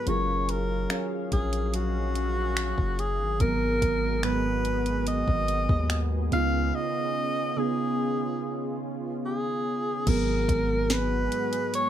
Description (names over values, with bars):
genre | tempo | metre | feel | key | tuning
contemporary R&B | 72 BPM | 4/4 | straight | G# dorian | A4 = 438 Hz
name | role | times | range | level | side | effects
breathy alto saxophone | melody | 0.0-11.9 s | F#4 to E#5 | -29 LUFS | equal | tape echo
soft electric-piano-like synth keys | accompaniment | 0.0-11.9 s | G#2 to E#5 | -31 LUFS | right 4 dB | chorus
warm analog pad | sustained chords | 0.0-11.9 s | D#3 to E#5 | -35 LUFS | left 2 dB | chorus, sidechain pumping
long sustained 808-style bass | bass | 0.1-11.3 s | F#1 to D#2 | -29 LUFS | left 1 dB | none
smooth R&B drum kit | drums | 0.1-11.9 s | crash cymbal, finger snaps, hi-hat, kick drum, snare drum | -28 LUFS | equal | none
room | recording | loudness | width
moderate studio reverb, RT60 0.5 s | none | -24 LUFS | side -10 dB against mid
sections
0.0-10.1 A section; 10.1-11.9 B section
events
break 6.7-10.1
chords
0.1 D#m11/F#; 3.4 G#m9; 6.3 C#9; 10.1 G#m9